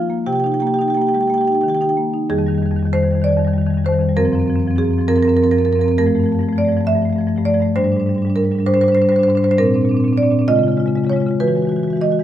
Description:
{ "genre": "classical, contemporary piece for solo marimba", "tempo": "57-69 BPM (dotted quarters)", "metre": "6/8", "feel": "rubato", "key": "F dorian", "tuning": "A4 = 438 Hz", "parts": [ { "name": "marimba with medium mallets", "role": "solo", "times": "0.0-12.2 s", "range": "F2 to G5", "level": "-14 LUFS", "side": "equal", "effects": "none" } ], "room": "moderate recital hall reverb, RT60 1.8 s", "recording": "none", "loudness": "-14 LUFS", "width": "side -11 dB against mid", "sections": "0.0-2.3 A section; 2.3-12.2 B section", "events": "none", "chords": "0.3 Cm7; 2.3 Fm9; 4.2 Gbmaj7#11; 6.0 Gm9; 7.8 Abmaj7#11; 9.6 Bbadd9; 10.5 Dbadd9; 11.4 Eadd9" }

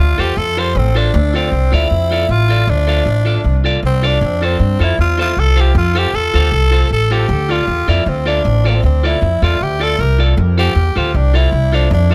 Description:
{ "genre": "ska", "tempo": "156 BPM", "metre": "4/4", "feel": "straight", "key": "unclear", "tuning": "A4 = 440 Hz", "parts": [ { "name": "growling tenor saxophone", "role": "melody", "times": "0.0-12.1 s", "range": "Bb3 to C5", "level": "-20 LUFS", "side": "equal", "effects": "dub echo" }, { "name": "upright bass", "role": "bass", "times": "0.0-12.1 s", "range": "A1 to G2", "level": "-16 LUFS", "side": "equal", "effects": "none" }, { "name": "clean electric guitar", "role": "accompaniment", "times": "0.2-12.1 s", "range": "F4 to F5", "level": "-22 LUFS", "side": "equal", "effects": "none" } ], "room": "light reverb", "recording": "none", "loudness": "-14 LUFS", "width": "mono", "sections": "0.0-12.1 A section", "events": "none", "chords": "0.0 F; 1.1 Dm; 4.2 F; 7.3 Dm" }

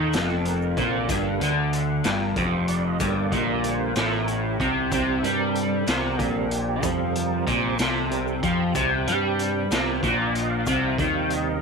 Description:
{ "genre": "psychedelic rock", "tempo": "63 BPM (dotted quarters)", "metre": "6/8", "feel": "straight", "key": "unclear", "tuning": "A4 = 440 Hz", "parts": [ { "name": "tonewheel organ", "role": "sustained chords", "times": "0.0-11.6 s", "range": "C3 to F5", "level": "-30 LUFS", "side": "right 12 dB", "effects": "slow rotary speaker, chorus vibrato" }, { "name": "crunchy overdriven guitar", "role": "riff", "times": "0.0-11.6 s", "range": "F2 to G3", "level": "-23 LUFS", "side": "left 1 dB", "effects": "flanger" }, { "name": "growling picked electric bass", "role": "bass", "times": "0.0-11.6 s", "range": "F1 to G2", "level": "-30 LUFS", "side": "left 1 dB", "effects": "overdrive" }, { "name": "raw garage drum kit", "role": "drums", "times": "0.1-11.5 s", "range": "hi-hat, kick drum, snare drum", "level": "-30 LUFS", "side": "left 1 dB", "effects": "none" }, { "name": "egg shaker", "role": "percussion", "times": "0.1-11.4 s", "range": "none", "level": "-41 LUFS", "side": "left 17 dB", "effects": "none" } ], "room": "light reverb, small room ambience", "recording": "1960s-style stereo with parts hard left and right", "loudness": "-21 LUFS", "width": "side -4 dB against mid", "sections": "0.0-11.6 A section", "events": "tonewheel organ solo 0.0-11.6", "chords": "0.0 F5; 1.1 Gm; 4.9 C5" }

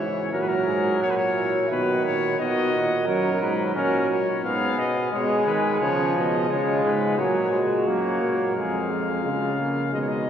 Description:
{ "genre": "classical, imitative canzona for brass ensemble", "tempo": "87 BPM", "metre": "4/4", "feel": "straight", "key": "unclear", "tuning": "A4 = 441 Hz", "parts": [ { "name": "clear trumpet", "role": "melody", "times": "0.0-10.3 s", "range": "A#4 to E#5", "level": "-28 LUFS", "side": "left 2 dB", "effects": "none" }, { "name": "warm flugelhorn", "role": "second line", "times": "0.0-10.3 s", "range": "D#4 to A#4", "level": "-27 LUFS", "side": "right 1 dB", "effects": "none" }, { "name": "brilliant trombone", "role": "accompaniment", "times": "0.0-10.3 s", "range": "D#3 to C#4", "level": "-25 LUFS", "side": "right 1 dB", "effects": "none" }, { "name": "clear bass trombone", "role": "bass", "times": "0.0-10.3 s", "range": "E#2 to D#3", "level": "-28 LUFS", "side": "equal", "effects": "none" } ], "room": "wet cathedral reverb, RT60 5.3 s", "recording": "heard from further back in the room", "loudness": "-21 LUFS", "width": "side -9 dB against mid", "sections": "0.0-8.6 A section; 8.6-10.3 B section", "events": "none", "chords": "0.3 F#; 1.7 B; 3.1 F#; 4.4 G#m; 7.2 F#/A#; 8.6 C#/E#" }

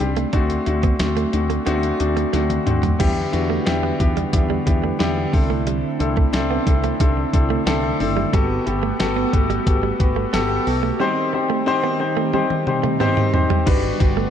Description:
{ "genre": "1980s-style pop", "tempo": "90 BPM", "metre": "4/4", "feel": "straight", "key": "G major", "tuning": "A4 = 445 Hz", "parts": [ { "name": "clear grand piano", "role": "accompaniment", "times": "0.0-14.3 s", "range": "G3 to C5", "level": "-21 LUFS", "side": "left 3 dB", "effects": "none" }, { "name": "woody fretless electric bass", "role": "bass", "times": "0.0-14.2 s", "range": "F#1 to E2", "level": "-24 LUFS", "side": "equal", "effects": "none" }, { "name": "clean 12-bit digital drum machine", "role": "drums", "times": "0.0-14.2 s", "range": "crash cymbal, hi-hat, kick drum, snare drum, toms", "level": "-21 LUFS", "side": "equal", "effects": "none" }, { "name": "direct-recorded clean electric guitar", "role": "riff", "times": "0.2-14.3 s", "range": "F#3 to D4", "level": "-27 LUFS", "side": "right 11 dB", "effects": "wide subtle chorus, tape echo" }, { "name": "chorused pulse-width pad", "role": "sustained chords", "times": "3.0-14.3 s", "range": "D3 to G4", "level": "-27 LUFS", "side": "right 3 dB", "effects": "none" } ], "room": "light reverb", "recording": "dark, warm production", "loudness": "-17 LUFS", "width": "side -9 dB against mid", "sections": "0.0-3.0 A section; 3.0-13.7 B section", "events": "drum fill 2.3-3.0, 12.3-13.7", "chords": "0.3 D7; 3.0 Em7; 5.3 C69; 8.3 Gmaj9; 11.0 Cm; 13.7 Gmaj7" }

